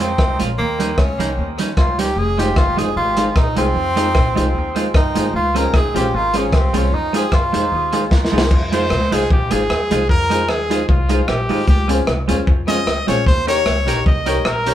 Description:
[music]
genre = ska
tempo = 151 BPM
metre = 4/4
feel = swing 54% on 8ths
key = F minor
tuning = A4 = 439 Hz
[part]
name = clear tenor saxophone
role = melody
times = 0.0-8.1 s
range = Bb3 to Bb4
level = -21 LUFS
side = right 1 dB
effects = dub echo
[part]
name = semi-hollow electric guitar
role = accompaniment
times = 0.0-14.7 s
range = G3 to Bb4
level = -24 LUFS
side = right 5 dB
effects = dub echo
[part]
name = upright bass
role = bass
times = 0.0-14.7 s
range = F1 to G2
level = -22 LUFS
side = equal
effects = none
[part]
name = crunchy breakbeat drum kit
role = drums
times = 0.0-14.7 s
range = crash cymbal, hi-hat, kick drum, rim click, snare drum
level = -18 LUFS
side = equal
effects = dub echo
[part]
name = dark upright piano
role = stabs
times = 2.4-14.7 s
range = Db4 to Db5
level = -24 LUFS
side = left 3 dB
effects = none
[part]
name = brilliant trumpet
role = melody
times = 8.7-14.7 s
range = F4 to Eb5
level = -20 LUFS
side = left 1 dB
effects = none
[sound]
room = moderate studio reverb, RT60 0.6 s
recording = band playing live in one room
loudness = -14 LUFS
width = side -11 dB against mid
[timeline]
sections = 0.0-8.5 A section; 8.5-14.7 B section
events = drum fill 8.1-8.5; trumpet solo 8.5-14.7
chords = 0.0 Dbmaj7; 0.6 Eb7; 2.2 Fm7; 5.3 Dbmaj7; 6.9 Fm7; 11.7 Dbmaj7; 13.3 Eb7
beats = 0.19 | 0.58 0.98 1.38 1.77 | 2.17 2.56 2.96 3.36 | 3.75 4.15 4.55 4.94 | 5.34 5.74 6.13 6.53 | 6.92 7.32 7.72 8.11 | 8.51 8.91 9.30 9.70 | 10.10 10.49 10.89 11.29 | 11.68 12.08 12.47 12.87 | 13.27 13.66 14.06 14.46

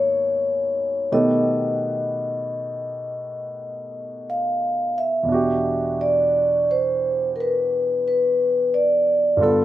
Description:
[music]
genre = jazz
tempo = 58 BPM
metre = 4/4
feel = swing 66% on 8ths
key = E minor from 5.3 s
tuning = A4 = 440 Hz
[part]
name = vibraphone with soft mallets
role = melody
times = 0.0-9.6 s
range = A4 to E#5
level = -20 LUFS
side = equal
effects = slapback echo
[part]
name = warm grand piano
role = accompaniment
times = 0.0-9.6 s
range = E2 to A4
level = -26 LUFS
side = right 2 dB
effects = none
[sound]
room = light reverb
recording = recorded outdoors, with no room sound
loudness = -19 LUFS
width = side -13 dB against mid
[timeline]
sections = 0.0-5.3 A section; 5.3-9.6 B section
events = none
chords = 0.0 G#m9; 1.1 Baug7; 5.3 Em9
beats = 0.08 | 1.11 2.14 3.17 4.22 | 5.28 6.31 7.34 8.37 | 9.40

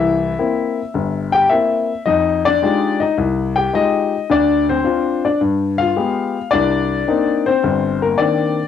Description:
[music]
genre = solo jazz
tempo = 108 BPM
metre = 4/4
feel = swing 69% on 8ths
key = unclear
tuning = A4 = 440 Hz
[part]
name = warm grand piano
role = solo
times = 0.0-8.7 s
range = G1 to G5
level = -15 LUFS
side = left 4 dB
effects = cassette tape
[sound]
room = wet studio reverb, RT60 0.5 s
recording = home recording on cassette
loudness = -15 LUFS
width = side -8 dB against mid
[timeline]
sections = 0.0-8.7 A section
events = none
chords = 0.0 C7; 2.1 Fm9; 4.3 Dm7; 5.4 G7b9; 6.5 Cm9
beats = 0.38 0.94 1.50 | 2.06 2.61 3.17 3.73 | 4.28 4.84 5.40 5.96 | 6.51 7.07 7.62 8.18

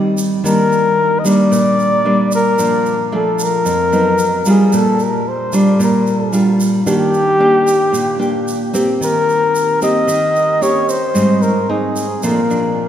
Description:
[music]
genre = bossa nova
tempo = 112 BPM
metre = 4/4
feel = straight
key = unclear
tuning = A4 = 440 Hz
[part]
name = breathy flugelhorn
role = melody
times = 0.0-12.9 s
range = G4 to Eb5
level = -15 LUFS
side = left 1 dB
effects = none
[part]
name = nylon-string guitar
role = accompaniment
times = 0.0-12.9 s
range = F2 to G4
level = -15 LUFS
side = equal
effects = none
[part]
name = tube shaker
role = percussion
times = 0.2-12.8 s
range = none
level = -29 LUFS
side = right 4 dB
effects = none
[sound]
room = wet cathedral reverb, RT60 4.0 s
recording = recorded in a church or concert hall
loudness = -12 LUFS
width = side -10 dB against mid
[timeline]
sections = 0.0-12.9 A section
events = none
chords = 0.4 Ebmaj7; 2.6 Bbmaj7; 4.2 Abm7; 4.7 Gm7/Bb; 6.9 Ebmaj7; 9.0 Cm7/Eb; 10.6 Bbm69; 11.2 Abmaj7; 12.2 Bbmaj7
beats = | 0.44 0.98 1.51 2.05 | 2.58 3.12 3.66 4.19 | 4.73 5.26 5.80 6.33 | 6.87 7.41 7.94 8.48 | 9.01 9.55 10.08 10.62 | 11.15 11.69 12.23 12.76

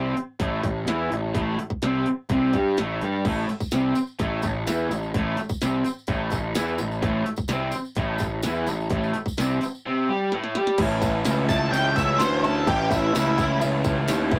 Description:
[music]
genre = garage rock duo or trio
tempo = 127 BPM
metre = 4/4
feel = straight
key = A major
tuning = A4 = 440 Hz
[part]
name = raw garage guitar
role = riff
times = 0.0-14.4 s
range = A2 to G4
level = -27 LUFS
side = equal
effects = overdrive
[part]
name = fuzz picked electric bass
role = bass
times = 0.0-14.4 s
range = E1 to G2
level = -30 LUFS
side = equal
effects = overdrive
[part]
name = minimal click drum kit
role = drums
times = 0.2-14.4 s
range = crash cymbal, hi-hat, kick drum, ride cymbal, snare drum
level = -31 LUFS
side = equal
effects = none
[part]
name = tambourine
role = percussion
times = 3.5-14.2 s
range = none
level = -43 LUFS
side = equal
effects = none
[part]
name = octave-fuzz lead guitar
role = melody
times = 11.5-13.6 s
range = E4 to A5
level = -26 LUFS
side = equal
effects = distortion
[sound]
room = moderate booth ambience, RT60 0.2 s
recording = rough rehearsal-room recording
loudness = -24 LUFS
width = mono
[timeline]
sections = 0.0-10.8 A section; 10.8-14.4 B section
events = drum fill 10.3-10.8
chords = 0.0 A5; 10.8 A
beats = 0.39 0.87 | 1.34 1.82 2.29 2.77 | 3.24 3.71 4.19 4.66 | 5.14 5.61 6.08 6.56 | 7.03 7.50 7.97 8.45 | 8.92 9.39 9.86 10.33 | 10.80 11.27 11.74 12.21 | 12.67 13.14 13.61 14.08

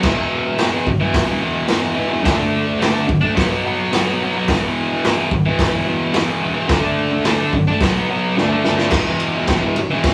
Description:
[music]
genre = garage rock duo or trio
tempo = 108 BPM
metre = 4/4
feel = straight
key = unclear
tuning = A4 = 439 Hz
[part]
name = thick fuzz guitar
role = riff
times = 0.0-10.1 s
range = E2 to D4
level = -20 LUFS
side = equal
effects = distortion
[part]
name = raw garage drum kit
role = drums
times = 0.0-10.1 s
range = crash cymbal, hi-hat, kick drum, ride cymbal, snare drum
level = -22 LUFS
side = equal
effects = none
[sound]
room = moderate studio reverb, RT60 0.5 s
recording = rough rehearsal-room recording, warm saturation, small room ambience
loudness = -18 LUFS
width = mono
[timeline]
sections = 0.0-8.9 A section; 8.9-10.1 B section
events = drum fill 8.4-8.9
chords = 0.0 E5; 2.3 D5; 3.4 B5; 4.5 E5; 6.7 D5; 7.8 B5; 8.4 D5; 8.9 E5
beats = | 0.04 0.59 1.15 1.70 | 2.26 2.81 3.37 3.92 | 4.47 5.03 5.58 6.14 | 6.70 7.25 7.81 8.36 | 8.92 9.48 10.03

